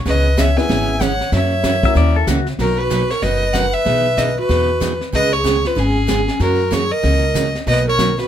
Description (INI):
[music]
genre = country, western swing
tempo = 189 BPM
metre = 4/4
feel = swing 61% on 8ths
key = B major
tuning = A4 = 440 Hz
[part]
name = clear fiddle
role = melody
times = 0.1-8.3 s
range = G#4 to G#5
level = -20 LUFS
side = left 2 dB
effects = none
[part]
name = breathy clarinet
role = second line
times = 0.1-8.3 s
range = C#4 to E5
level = -22 LUFS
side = right 3 dB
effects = none
[part]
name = picked steel-string acoustic guitar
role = accompaniment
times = 0.1-8.1 s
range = B2 to G#4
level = -22 LUFS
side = right 4 dB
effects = none
[part]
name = upright bass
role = bass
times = 0.1-8.2 s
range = F#1 to F#2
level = -19 LUFS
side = left 1 dB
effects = none
[part]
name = jazz brush drum kit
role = drums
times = 0.1-8.3 s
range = brushed snare drum, hi-hat, kick drum, snare drum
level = -25 LUFS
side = left 2 dB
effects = none
[part]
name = dark upright piano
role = accompaniment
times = 0.6-2.3 s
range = A#3 to B4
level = -22 LUFS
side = left 4 dB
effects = none
[part]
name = clean lap steel guitar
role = second line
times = 1.9-2.5 s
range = F#4 to E5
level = -21 LUFS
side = left 6 dB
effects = none
[sound]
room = light reverb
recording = none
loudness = -14 LUFS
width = side -10 dB against mid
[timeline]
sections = 0.0-2.6 A section; 2.6-8.3 B section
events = none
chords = 0.1 C#m7; 1.3 F#7; 2.6 Bmaj7; 3.9 Emaj9/B; 5.1 C#7; 6.4 F#6; 7.7 Bmaj9